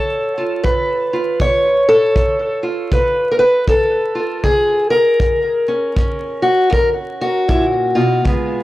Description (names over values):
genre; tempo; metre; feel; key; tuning
acoustic country blues, solo or duo; 79 BPM; 4/4; swing 62% on 8ths; unclear; A4 = 441 Hz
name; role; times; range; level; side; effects
fingerpicked steel-string acoustic guitar; melody; 0.0-8.6 s; F#2 to C#5; -14 LUFS; equal; tape echo
kick drum; drums; 0.6-8.5 s; none; -19 LUFS; equal; none
room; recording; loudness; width
moderate studio reverb, RT60 0.5 s; dry, gritty hardware recording, transformer saturation, vinyl crackle; -13 LUFS; side -16 dB against mid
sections
0.0-8.6 A section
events
none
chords
0.0 C#7; 5.2 F#